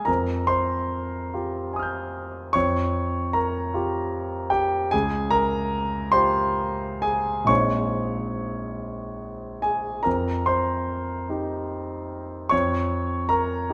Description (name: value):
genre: classical, impressionist solo piano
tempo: 42-52 BPM (dotted quarters)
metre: 6/8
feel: rubato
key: unclear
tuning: A4 = 440 Hz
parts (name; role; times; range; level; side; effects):
- warm concert grand piano; solo; 0.0-13.7 s; Bb1 to G6; -25 LUFS; equal; none
room: moderate recital hall reverb, RT60 1.5 s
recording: none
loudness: -25 LUFS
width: mono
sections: 0.1-13.7 A section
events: none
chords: 0.1 Fm9; 2.5 Bbm6/F; 4.9 Dbmaj7#11; 7.5 Bbm11; 10.1 Fsus2; 12.5 Eb7sus2/F (rootless)